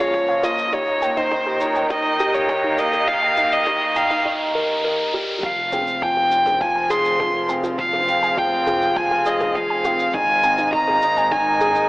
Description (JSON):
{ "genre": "piano and strings electronica", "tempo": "102 BPM", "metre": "4/4", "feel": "straight", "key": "F minor", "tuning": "A4 = 439 Hz", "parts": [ { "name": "clear violin", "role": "melody", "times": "0.0-11.9 s", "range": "C5 to C6", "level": "-19 LUFS", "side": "equal", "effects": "none" }, { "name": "dark string quartet", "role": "sustained chords", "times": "0.0-11.9 s", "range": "F3 to G5", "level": "-25 LUFS", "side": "equal", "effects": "sidechain pumping" }, { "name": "warbly dusty pluck", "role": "arpeggios", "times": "0.0-11.7 s", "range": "Eb4 to Ab5", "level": "-29 LUFS", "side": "right 1 dB", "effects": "chorus, cassette tape, sidechain pumping, digital delay" }, { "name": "felt-muted upright piano", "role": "riff", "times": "0.0-11.9 s", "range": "Eb3 to Bb4", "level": "-24 LUFS", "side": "equal", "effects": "none" }, { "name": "riser", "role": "sound effects", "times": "0.2-5.4 s", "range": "none", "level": "-29 LUFS", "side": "equal", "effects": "none" }, { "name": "electronic kick drum", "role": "drums", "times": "0.1-11.4 s", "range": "none", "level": "-33 LUFS", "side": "equal", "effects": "none" }, { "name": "electronic shaker and toms", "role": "drums", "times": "0.1-11.9 s", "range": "none", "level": "-37 LUFS", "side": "equal", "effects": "high-pass filter on perc, high-pass filter on toms, high-pass filter on room" }, { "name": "warm studio double bass section", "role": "bass", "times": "5.4-11.9 s", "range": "F1 to Ab1", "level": "-35 LUFS", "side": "equal", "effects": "sidechain pumping" } ], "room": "wet echo chamber reverb, RT60 2.3 s", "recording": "high-pass filter, telephone sound", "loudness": "-17 LUFS", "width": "side -20 dB against mid", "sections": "0.0-5.4 A section; 5.4-11.9 B section", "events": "build-up 0.0-5.4; filter sweep on string quartet 0.0-5.4; riser 0.2-5.4; break 4.3-5.4; drop 5.4-11.9", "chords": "0.0 Bbm7; 0.7 Eb; 5.4 Fm; 10.1 Ab", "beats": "0.14 | 0.73 1.31 1.90 2.49 | 3.08 3.67 4.25 4.84 | 5.43 6.02 6.61 7.20 | 7.79 8.37 8.96 9.55 | 10.14 10.73 11.31" }